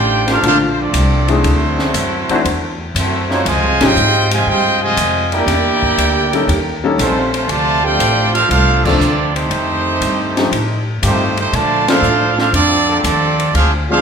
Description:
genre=jazz, big band swing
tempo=119 BPM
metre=4/4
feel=swing 69% on 8ths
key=Bb major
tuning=A4 = 440 Hz
part: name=clear trumpet section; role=melody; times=0.0-14.0 s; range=A3 to A5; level=-16 LUFS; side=right 2 dB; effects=none
part: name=muted trombone section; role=second line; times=0.0-14.0 s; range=C3 to G4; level=-21 LUFS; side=right 3 dB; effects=none
part: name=upright bass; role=bass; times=0.0-14.0 s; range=Ab1 to Bb2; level=-18 LUFS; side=equal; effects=none
part: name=warm trombone section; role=sustained chords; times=0.3-13.0 s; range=D3 to Db5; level=-24 LUFS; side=equal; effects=none
part: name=open jazz drum kit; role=drums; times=0.3-13.7 s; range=crash cymbal, hi-hat, kick drum, ride cymbal, snare drum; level=-22 LUFS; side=left 1 dB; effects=none
part: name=clear upright piano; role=accompaniment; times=0.4-14.0 s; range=D3 to A4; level=-19 LUFS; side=left 4 dB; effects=none
room=wet recital hall reverb, RT60 1.5 s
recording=recorded in a church or concert hall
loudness=-12 LUFS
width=side -6 dB against mid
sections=0.0-14.0 A section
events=band accent 3.7, 8.8, 11.8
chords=0.0 Bbmaj9; 1.4 D9; 3.5 Dbmaj9#11; 5.5 Em7b5; 6.5 Eb7#11; 7.5 Dm7; 9.5 F9; 11.5 Bbmaj9

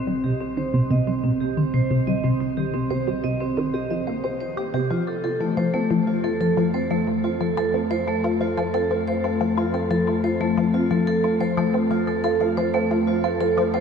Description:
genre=ambient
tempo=90 BPM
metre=4/4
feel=straight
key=unclear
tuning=A4 = 440 Hz
part: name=analog drone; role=bass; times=0.0-13.8 s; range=C2 to F2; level=-34 LUFS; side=left 1 dB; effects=chorus
part: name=vibraphone with medium hard mallets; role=arpeggios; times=0.1-13.8 s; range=A3 to Eb5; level=-23 LUFS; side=moving between left 3 dB and right 6 dB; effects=auto-pan, low-pass filter, tape echo, shimmer reverb
part: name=resonant blip pluck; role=riff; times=0.1-13.8 s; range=C3 to G4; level=-23 LUFS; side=left 2 dB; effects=phaser, tape echo, shimmer reverb
room=wet huge ambient reverb, RT60 7.9 s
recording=in a vast, echoing space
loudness=-20 LUFS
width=side -6 dB against mid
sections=0.0-13.8 A section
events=fade-in on synth drone 0.0-13.8; filter sweep on synth arpeggio sound 0.0-13.8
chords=0.0 Cm; 4.9 F

